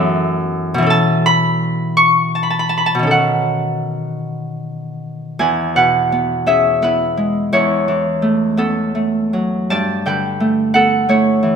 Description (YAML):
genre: classical, solo harp piece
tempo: 51-61 BPM (dotted quarters)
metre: 6/8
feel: rubato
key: E major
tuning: A4 = 440 Hz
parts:
  - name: Celtic harp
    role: solo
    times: 0.0-11.6 s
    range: E2 to C#6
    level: -14 LUFS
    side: equal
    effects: none
room: wet concert hall reverb, RT60 1.8 s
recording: none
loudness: -14 LUFS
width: side -6 dB against mid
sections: 0.0-5.4 A section; 5.4-11.6 B section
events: none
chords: 0.0 F#m11; 0.9 B9sus4; 3.1 B9; 5.4 E69; 7.5 F#m11/E; 9.7 G69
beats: | 0.90 1.97 | 3.11 4.27 | 5.39 6.47 | 7.52 8.57 | 9.70 10.74